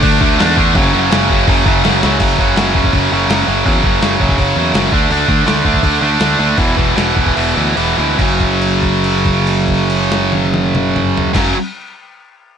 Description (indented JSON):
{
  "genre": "punk rock",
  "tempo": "141-166 BPM",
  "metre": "4/4",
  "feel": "straight",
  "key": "F# minor",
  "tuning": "A4 = 440 Hz",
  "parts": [
    { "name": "tight distorted guitar", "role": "riff", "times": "0.0-11.6 s", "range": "E2 to D4", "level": "-13 LUFS", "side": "right 1 dB", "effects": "distortion" },
    { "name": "growling picked electric bass", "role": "bass", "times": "0.0-11.5 s", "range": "E1 to E2", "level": "-19 LUFS", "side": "equal", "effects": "overdrive" },
    { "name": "lo-fi sampler-style drum kit", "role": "drums", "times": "0.0-11.4 s", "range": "crash cymbal, hi-hat, kick drum, snare drum, toms", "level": "-18 LUFS", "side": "left 1 dB", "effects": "none" }
  ],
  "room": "little or no reverb",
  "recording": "nothing above 11.0 kHz",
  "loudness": "-11 LUFS",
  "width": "side -8 dB against mid",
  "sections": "0.0-2.2 A section; 2.2-8.2 B section; 8.2-11.6 C section",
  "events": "drum fill 1.8-2.2; slowing down 5.1-8.2; kick and snare drop out 7.4-8.2; held note 8.2-11.3",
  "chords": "0.0 D5; 0.8 F#5; 4.9 D5; 6.6 E5; 8.2 F#5"
}